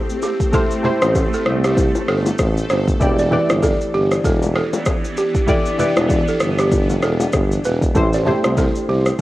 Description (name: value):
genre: afrobeats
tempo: 97 BPM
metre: 4/4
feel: swing 58% on 16ths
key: A minor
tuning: A4 = 440 Hz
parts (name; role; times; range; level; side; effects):
- warm analog keys; accompaniment; 0.0-9.2 s; E3 to D5; -22 LUFS; equal; chorus, cassette tape
- granular cloud pad; sustained chords; 0.0-9.2 s; E3 to A4; -28 LUFS; equal; built-in reverb, cassette tape
- afro-pop drum kit; drums; 0.1-9.2 s; kick drum, rim click, shaker; -20 LUFS; equal; overdrive
- balafon; riff; 0.2-9.0 s; G4 to D5; -23 LUFS; right 3 dB; cassette tape, analog delay
- bongos and congas; percussion; 0.2-8.7 s; none; -25 LUFS; left 3 dB; none
- warm tuba; bass; 1.0-9.1 s; E1 to C2; -20 LUFS; equal; none
room: light reverb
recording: home recording on cassette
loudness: -15 LUFS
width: side -16 dB against mid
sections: 0.0-9.2 A section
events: none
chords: 0.0 Am7; 3.0 Em7; 8.0 Am7